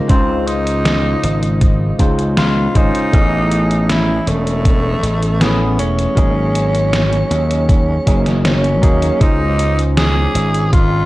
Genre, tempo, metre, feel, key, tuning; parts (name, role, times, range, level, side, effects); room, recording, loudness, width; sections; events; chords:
vaporwave; 79 BPM; 4/4; straight; Db major; A4 = 440 Hz
raspy tenor saxophone; melody; 0.0-11.1 s; A3 to Ab4; -20 LUFS; equal; tape echo
bell-like tine electric piano; accompaniment; 0.0-11.1 s; Db3 to C5; -19 LUFS; equal; wide subtle chorus, vintage 12-bit sampler grit
gritty slap bass; bass; 0.1-11.0 s; E1 to Eb2; -17 LUFS; equal; overdrive, tube saturation
detuned 8-bit digital drum machine; drums; 0.1-10.9 s; hi-hat, snare drum; -20 LUFS; equal; gated reverb
electronic kick drum; drums; 0.1-10.9 s; -14 LUFS; equal
light reverb, digital ambience; cassette tape; -12 LUFS; side -17 dB against mid
0.0-9.2 A section; 9.2-11.1 B section
0.0 Dbmaj9; 3.1 Amaj7; 6.2 Ab7sus4; 9.2 Dbmaj9